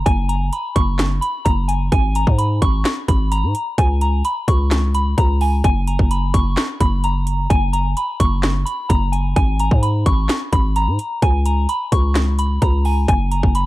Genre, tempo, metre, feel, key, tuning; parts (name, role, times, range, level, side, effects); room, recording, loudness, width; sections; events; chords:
hip hop, trap; 129 BPM; 4/4; half-time; A4 = 440 Hz
soft synth bell; melody; 0.0-13.7 s; G#5 to C#6; -22 LUFS; equal; chorus, tremolo, tape echo
growling 808-style bass; bass; 0.0-13.7 s; F#1 to G#2; -18 LUFS; equal
trap drum kit; drums; 0.1-13.7 s; handclaps, hi-hat, kick drum, snare drum; -18 LUFS; equal; overdrive
digital ambience; dark, warm production; -15 LUFS; side -17 dB against mid
0.0-13.7 A section
0.0 F#; 1.9 G#sus2; 3.8 A#m7/C#; 5.6 F#; 9.4 G#sus2; 11.2 A#m7/C#; 13.1 F#